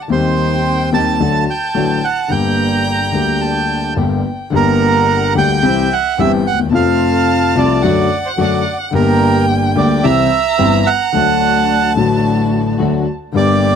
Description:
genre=tango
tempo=109 BPM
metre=4/4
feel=rubato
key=G harmonic minor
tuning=A4 = 441 Hz
part: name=warm violin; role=second line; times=0.0-13.8 s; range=E5 to Bb5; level=-22 LUFS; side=equal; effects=none
part: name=bandoneon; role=melody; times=0.1-13.8 s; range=Bb4 to A5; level=-16 LUFS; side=right 6 dB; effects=none
part: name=warm concert grand piano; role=accompaniment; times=0.1-13.8 s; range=G1 to G4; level=-15 LUFS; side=left 4 dB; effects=none
part: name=dark studio string section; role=stabs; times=0.1-13.8 s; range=F#2 to G4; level=-22 LUFS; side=right 6 dB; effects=none
room=little or no reverb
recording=dry, close 1970s-style studio recording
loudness=-12 LUFS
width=side -7 dB against mid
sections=0.0-4.5 A section; 4.5-13.8 A section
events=none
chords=0.1 Cm/Eb; 1.2 D; 2.3 Gm; 5.6 C; 6.7 F; 7.8 D/F#; 8.9 Gm; 10.0 C; 11.1 D

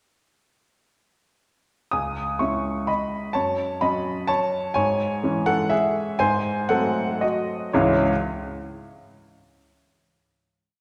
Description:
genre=classical, piano waltz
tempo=111-133 BPM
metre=3/4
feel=rubato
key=C# minor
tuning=A4 = 440 Hz
part: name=warm upright piano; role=solo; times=1.9-8.1 s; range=C#2 to D#6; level=-24 LUFS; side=equal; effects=none
room=wet concert hall reverb, RT60 2.1 s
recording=heard from further back in the room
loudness=-23 LUFS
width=mono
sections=1.9-7.8 A section; 7.8-9.3 final chord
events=none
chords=1.9 C#m; 3.3 F#m; 4.8 C#m/G#; 6.2 G#7b9; 7.8 C#m

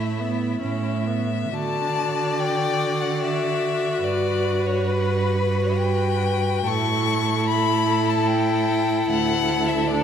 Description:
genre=classical, slow romantic movement for string quartet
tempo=63-76 BPM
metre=3/4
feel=rubato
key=D major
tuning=A4 = 441 Hz
part: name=rich violin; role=melody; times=0.0-10.0 s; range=B4 to C#6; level=-26 LUFS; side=left 8 dB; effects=none
part: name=clear violin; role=second line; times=0.0-10.0 s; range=E4 to D5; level=-28 LUFS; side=left 2 dB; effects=none
part: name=rich viola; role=accompaniment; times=0.0-10.0 s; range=A3 to F#4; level=-25 LUFS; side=right 1 dB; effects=none
part: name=clear cello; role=bass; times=0.0-10.0 s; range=D2 to D3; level=-25 LUFS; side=right 4 dB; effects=none
room=wet concert hall reverb, RT60 2.5 s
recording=none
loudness=-20 LUFS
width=side -8 dB against mid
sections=0.0-1.5 A section; 1.5-10.0 B section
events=none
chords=0.0 A; 1.5 D; 4.0 Gmaj7; 6.7 A; 9.1 D5

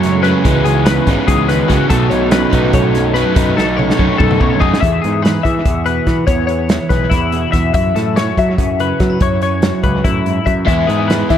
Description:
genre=math rock and midwest emo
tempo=287 BPM (eighths)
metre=7/8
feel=straight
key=E major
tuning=A4 = 439 Hz
part: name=twelve-string electric guitar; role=accompaniment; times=0.0-11.4 s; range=E2 to A4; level=-19 LUFS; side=right 5 dB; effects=dub echo
part: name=twelve-string electric guitar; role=arpeggios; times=0.0-11.4 s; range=E4 to E5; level=-18 LUFS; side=left 8 dB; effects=analog chorus, dub echo
part: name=overdriven electric guitar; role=riff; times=0.0-4.8, 10.7-11.4 s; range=F#2 to E4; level=-18 LUFS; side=right 1 dB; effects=dub echo
part: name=growling picked electric bass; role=bass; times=0.0-11.4 s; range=G#1 to F#3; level=-18 LUFS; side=equal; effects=overdrive
part: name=loose indie drum kit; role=drums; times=0.0-11.4 s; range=hi-hat, kick drum, snare drum, toms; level=-17 LUFS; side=equal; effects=dub echo
room=light reverb, small room ambience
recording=echo-heavy mix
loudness=-11 LUFS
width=side -9 dB against mid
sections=0.0-4.8 A section; 4.8-11.4 B section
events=drum fill 3.6-4.8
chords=0.4 C#m11; 1.9 B9; 4.8 E; 7.7 F#m7; 10.7 E

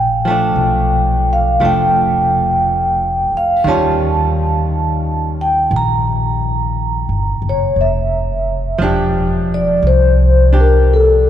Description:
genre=jazz ballad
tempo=58 BPM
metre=4/4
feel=swing 68% on 8ths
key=F major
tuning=A4 = 439 Hz
part: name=vibraphone with soft mallets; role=melody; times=0.0-11.3 s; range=A4 to Bb5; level=-15 LUFS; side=equal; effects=none
part: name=upright bass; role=bass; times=0.0-11.3 s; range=E1 to Eb2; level=-16 LUFS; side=equal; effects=none
part: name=archtop guitar, miked and amplified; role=accompaniment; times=0.3-11.3 s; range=Eb3 to G4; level=-20 LUFS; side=right 1 dB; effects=none
room=wet cathedral reverb, RT60 5.2 s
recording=recorded in a church or concert hall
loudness=-12 LUFS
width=side -10 dB against mid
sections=0.0-11.3 A section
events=none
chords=0.0 Bbmaj7; 3.7 Eb9; 7.8 Fsus2

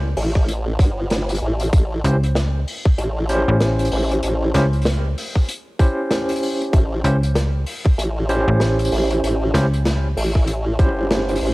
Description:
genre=glitch hop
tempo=96 BPM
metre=4/4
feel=swing 60% on 16ths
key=unclear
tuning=A4 = 441 Hz
part: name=slap-like FM bass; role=bass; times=0.0-10.1 s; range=A1 to C#2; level=-18 LUFS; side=equal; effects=none
part: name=formant-sweep wobble bass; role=bass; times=0.2-11.5 s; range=G1 to A1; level=-21 LUFS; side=equal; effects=chorus
part: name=unplugged drum kit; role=drums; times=0.2-11.5 s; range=hi-hat, rim click, snare drum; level=-25 LUFS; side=equal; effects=cassette tape
part: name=electronic kick drum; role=drums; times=0.4-10.9 s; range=none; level=-14 LUFS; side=equal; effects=cassette tape
part: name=barky tine electric piano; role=stabs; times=2.0-11.5 s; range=C#4 to B#4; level=-22 LUFS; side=equal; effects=overdrive, fast tremolo, sidechain pumping, cassette tape, tape echo
room=light reverb, small room ambience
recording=home recording on cassette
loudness=-17 LUFS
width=side -21 dB against mid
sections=0.0-11.5 A section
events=none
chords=0.0 A7#9

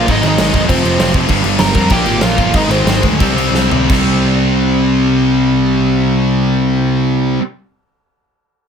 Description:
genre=punk rock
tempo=167-197 BPM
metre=4/4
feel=straight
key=C minor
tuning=A4 = 439 Hz
part: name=bluesy overdriven lead guitar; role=melody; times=0.0-3.0 s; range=C4 to Bb5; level=-17 LUFS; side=right 1 dB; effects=distortion
part: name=biting overdriven guitar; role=riff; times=0.0-7.4 s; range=F2 to C4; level=-17 LUFS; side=left 10 dB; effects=none
part: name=high-gain distorted guitar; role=riff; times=0.0-7.4 s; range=F2 to C4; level=-19 LUFS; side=right 1 dB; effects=distortion
part: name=sludgy distorted guitar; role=riff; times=0.0-7.4 s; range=F2 to C4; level=-18 LUFS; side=right 10 dB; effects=overdrive
part: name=fuzz picked electric bass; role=bass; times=0.0-7.4 s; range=E1 to F2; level=-18 LUFS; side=equal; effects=overdrive
part: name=big rock drum kit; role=drums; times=0.1-4.0 s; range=crash cymbal, kick drum, snare drum, toms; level=-17 LUFS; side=equal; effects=none
room=light reverb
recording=none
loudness=-11 LUFS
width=side -7 dB against mid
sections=0.0-3.9 A section; 3.9-6.8 B section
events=slowing down 1.3-3.9; drum fill 3.5-3.9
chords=0.1 Ab5; 0.7 F5; 1.3 Gm; 1.9 Bb5; 2.5 Ab; 3.2 C5

